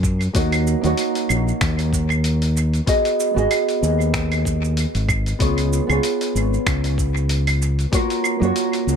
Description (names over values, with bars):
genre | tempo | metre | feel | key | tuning
sunset chillout | 95 BPM | 4/4 | swing 56% on 16ths | G# dorian | A4 = 440 Hz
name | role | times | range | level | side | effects
nylon-string guitar | accompaniment | 0.0-9.0 s | A#3 to D#5 | -22 LUFS | moving between left 4 dB and right 5 dB | auto-pan, dub echo
fingered electric bass | bass | 0.0-9.0 s | G#1 to F#2 | -20 LUFS | equal | tube saturation
dusty soul sampler-style drum kit | drums | 0.0-9.0 s | cabasa, claves, finger snaps, hi-hat | -26 LUFS | right 1 dB | dub echo
electronic kick drum | drums | 0.0-8.1 s | none | -23 LUFS | equal | none
room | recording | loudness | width
little or no reverb | echo-heavy mix | -17 LUFS | side -7 dB against mid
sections
0.0-9.0 A section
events
none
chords
0.3 D#m7; 2.9 G#m7; 5.4 C#7; 7.9 F#maj7